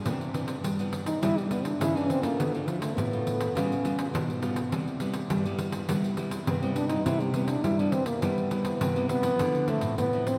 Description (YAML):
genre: samba and choro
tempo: 103 BPM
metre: 4/4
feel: straight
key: C major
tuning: A4 = 441 Hz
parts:
  - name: nylon-string guitar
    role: accompaniment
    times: 0.0-10.4 s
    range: G2 to F4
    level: -36 LUFS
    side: equal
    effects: none
  - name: nylon-string guitar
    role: bass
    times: 0.0-10.4 s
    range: A2 to G3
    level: -33 LUFS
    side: equal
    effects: none
  - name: pandeiro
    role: percussion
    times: 0.1-10.4 s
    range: none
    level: -36 LUFS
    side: equal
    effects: none
  - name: dark trombone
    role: melody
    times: 1.1-10.4 s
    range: D3 to E4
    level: -32 LUFS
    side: equal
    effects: none
room: wet cathedral reverb, RT60 5.8 s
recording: recorded in a church or concert hall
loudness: -28 LUFS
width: mono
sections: 0.0-9.4 A section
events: trombone solo 0.0-9.4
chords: 0.1 Cmaj9; 2.4 Dm7; 3.6 Db7#11; 4.7 Cmaj7; 9.4 Dm9